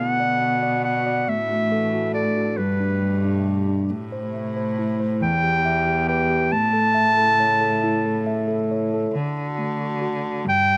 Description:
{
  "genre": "acoustic folk-pop ballad",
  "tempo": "46 BPM (dotted quarters)",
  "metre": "6/8",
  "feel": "straight",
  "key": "D major",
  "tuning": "A4 = 440 Hz",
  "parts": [
    { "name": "clear clarinet", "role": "melody", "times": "0.0-10.8 s", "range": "B4 to A5", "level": "-23 LUFS", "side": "equal", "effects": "none" },
    { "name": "mellow tine electric piano", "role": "accompaniment", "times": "0.0-10.8 s", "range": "D3 to E5", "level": "-27 LUFS", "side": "equal", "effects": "none" },
    { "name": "hollow soft pad", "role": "sustained chords", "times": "0.0-10.8 s", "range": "Bb2 to G4", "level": "-36 LUFS", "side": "equal", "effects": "chorus" },
    { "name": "rich cello", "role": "bass", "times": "0.0-10.8 s", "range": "E2 to D3", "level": "-29 LUFS", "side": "equal", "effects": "none" }
  ],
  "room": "little or no reverb",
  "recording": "recorded outdoors, with no room sound",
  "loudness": "-22 LUFS",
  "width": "mono",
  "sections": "0.0-9.1 A section; 9.1-10.8 B section",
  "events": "none",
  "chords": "0.0 Bm; 1.3 Dadd9/A; 2.6 Gadd9; 3.9 Am; 5.2 Em; 6.5 A; 9.1 D",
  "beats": "| 1.27 2.58 | 3.90 5.21 | 6.52 7.83 | 9.14 10.45"
}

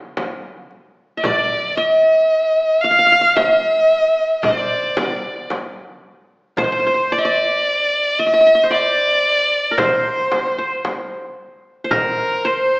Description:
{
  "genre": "Arabic maqam ensemble",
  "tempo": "112 BPM (eighths)",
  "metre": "10/8",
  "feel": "straight",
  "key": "unclear",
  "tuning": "A4 = 441 Hz",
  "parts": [
    { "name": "darbuka", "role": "percussion", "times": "0.2-12.2 s", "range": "none", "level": "-31 LUFS", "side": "equal", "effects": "none" },
    { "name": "frame drum", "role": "percussion", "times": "0.2-12.2 s", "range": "none", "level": "-25 LUFS", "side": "equal", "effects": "none" },
    { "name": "dark violin", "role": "melody", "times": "1.2-12.8 s", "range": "Bb4 to F5", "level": "-15 LUFS", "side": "equal", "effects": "none" },
    { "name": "qanun", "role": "second line", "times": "1.2-12.8 s", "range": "Bb4 to F5", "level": "-20 LUFS", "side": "equal", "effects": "none" }
  ],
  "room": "moderate scoring stage reverb, RT60 1.6 s",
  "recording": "recorded in a church or concert hall, small speaker sound",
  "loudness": "-14 LUFS",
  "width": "side -29 dB against mid",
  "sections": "0.0-12.8 A section",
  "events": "none",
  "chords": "none",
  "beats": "0.17 0.70 | 1.24 1.77 2.30 2.84 3.37 3.90 4.44 4.97 5.50 6.04 | 6.57 7.11 7.64 8.18 8.71 9.24 9.78 10.31 10.85 11.38 | 11.91 12.45"
}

